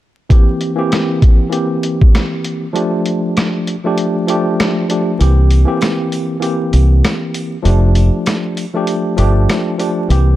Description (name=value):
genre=hip hop, boom-bap hip-hop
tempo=98 BPM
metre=4/4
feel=swing 59% on 16ths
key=F major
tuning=A4 = 440 Hz
part: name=bright tine electric piano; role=accompaniment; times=0.3-10.4 s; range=E3 to G4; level=-16 LUFS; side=equal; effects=overdrive, fast stereo tremolo, high-pass filter, low-pass filter
part: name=lo-fi sampler-style drum kit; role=drums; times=0.3-10.3 s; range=hi-hat, kick drum, rim click, snare drum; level=-14 LUFS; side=equal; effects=none
part: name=deep dub fingered electric bass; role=bass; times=5.2-10.4 s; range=F1 to C2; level=-10 LUFS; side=equal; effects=none
part: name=sleigh bells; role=percussion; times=5.2-10.3 s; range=none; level=-37 LUFS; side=right 5 dB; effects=none
room=little or no reverb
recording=dark, warm production, vinyl crackle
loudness=-12 LUFS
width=side -14 dB against mid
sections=0.3-5.2 A section; 5.2-10.4 B section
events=break 2.8-5.2; kick muted 5.2-10.4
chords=0.3 C7; 2.8 F69; 5.2 C7; 7.7 F69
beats=| 0.30 0.92 1.53 2.14 | 2.75 3.36 3.98 4.59 | 5.20 5.81 6.43 7.04 | 7.65 8.26 8.87 9.49 | 10.10